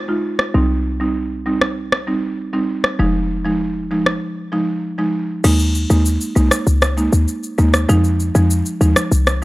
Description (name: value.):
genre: dancehall.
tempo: 98 BPM.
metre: 4/4.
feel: straight.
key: F minor.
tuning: A4 = 440 Hz.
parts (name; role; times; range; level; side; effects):
short 808-style bass; bass; 0.0-9.4 s; F1 to F2; -16 LUFS; equal; none.
buzzing marimba with medium mallets; accompaniment; 0.1-9.4 s; F3 to F4; -19 LUFS; right 1 dB; low-pass filter.
booming analog drum machine; drums; 0.4-9.4 s; crash cymbal, rim click, shaker; -19 LUFS; left 1 dB; none.
room: little or no reverb.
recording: dry, gritty hardware recording, transformer saturation.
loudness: -15 LUFS.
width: side -19 dB against mid.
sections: 0.0-5.4 A section; 5.4-9.4 B section.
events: break 4.2-5.4; kick muted 5.4-9.4.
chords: 0.0 Fm7; 0.5 Cm; 3.0 Fm7; 5.4 Ebsus4; 7.9 Fm7.